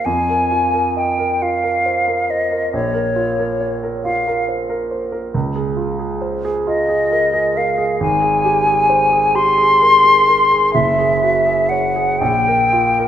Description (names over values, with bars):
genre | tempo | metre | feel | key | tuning
classical, impressionist duo for flute and grand piano | 45 BPM (dotted quarters) | 6/8 | uneven beats, rubato | unclear | A4 = 440 Hz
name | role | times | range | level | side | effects
hollow concert flute | melody | 0.0-13.1 s | Db5 to C6 | -14 LUFS | left 1 dB | none
warm grand piano | accompaniment | 0.0-13.1 s | Gb1 to Eb5 | -20 LUFS | right 3 dB | none
room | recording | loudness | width
wet scoring stage reverb, RT60 1.7 s | nothing above 10.9 kHz | -14 LUFS | side -10 dB against mid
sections
0.0-13.1 A section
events
none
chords
0.1 Fm7; 2.7 Bbm; 5.4 Dbmaj7; 8.0 Abmaj7; 10.7 Gbsus2; 12.2 Bb5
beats
| 0.07 1.42 | 2.74 4.05 | 5.35 6.68 | 8.01 9.36 | 10.75 12.20